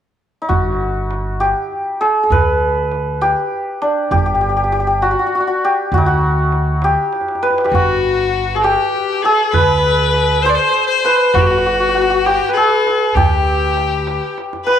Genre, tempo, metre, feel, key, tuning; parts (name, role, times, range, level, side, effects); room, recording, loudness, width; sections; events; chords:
Persian modal ensemble; 66 BPM (dotted quarters); 6/8; straight; G dastgah chahargah; A4 = 441 Hz
santur; melody; 0.4-14.8 s; D4 to C5; -15 LUFS; equal
upright bass; bass; 0.5-14.2 s; G1 to D2; -20 LUFS; right 1 dB
tombak; percussion; 0.5-14.8 s; -21 LUFS; right 4 dB
clear violin; second line; 7.7-14.8 s; F#4 to D5; -17 LUFS; left 6 dB
moderate echo chamber reverb, RT60 1.8 s, studio reverb; 1960s-style stereo; -13 LUFS; side -9 dB against mid
0.5-14.8 A section
drum fill 7.1-7.7, 14.4-14.8